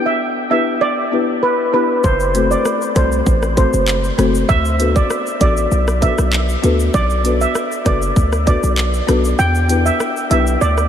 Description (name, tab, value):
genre	dancehall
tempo	98 BPM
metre	4/4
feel	straight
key	E minor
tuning	A4 = 440 Hz
part	folk marimba with medium mallets	accompaniment	0.0-10.4 s	A3 to D5	-20 LUFS	left 4 dB	none
part	steel pan	melody	0.1-10.9 s	B4 to G5	-18 LUFS	right 2 dB	analog delay
part	hard-hitting 808-style bass	bass	2.0-10.9 s	F#1 to E2	-17 LUFS	equal	none
part	island pop drum kit	drums	2.0-10.9 s	handclaps, hi-hat, kick drum, rim click, shaker	-20 LUFS	equal	none
room	moderate huge ambient reverb, RT60 9.1 s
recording	dreamy mix soaked in reverb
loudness	-13 LUFS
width	side -9 dB against mid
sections	0.0-10.9 A section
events	kick muted 9.4-10.9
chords	0.0 Em7; 2.0 F#dim; 4.5 D6; 6.9 Bm7; 9.4 Em7